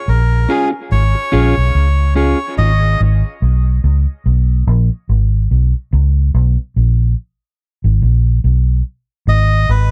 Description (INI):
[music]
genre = dub reggae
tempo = 72 BPM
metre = 4/4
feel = swing 57% on 16ths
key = unclear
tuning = A4 = 442 Hz
[part]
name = melodica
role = melody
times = 0.0-3.0, 9.3-9.9 s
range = G#4 to D#5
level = -22 LUFS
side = equal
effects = dub echo
[part]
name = vintage muted fingered electric bass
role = bass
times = 0.1-9.9 s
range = G#1 to C#2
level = -14 LUFS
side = equal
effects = none
[part]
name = mellow electric guitar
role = accompaniment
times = 0.5-2.4 s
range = C#4 to G#4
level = -22 LUFS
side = equal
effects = dub echo
[sound]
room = small room ambience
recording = none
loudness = -14 LUFS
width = mono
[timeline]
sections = 0.0-9.9 A section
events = none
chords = 0.0 C#; 2.6 C#5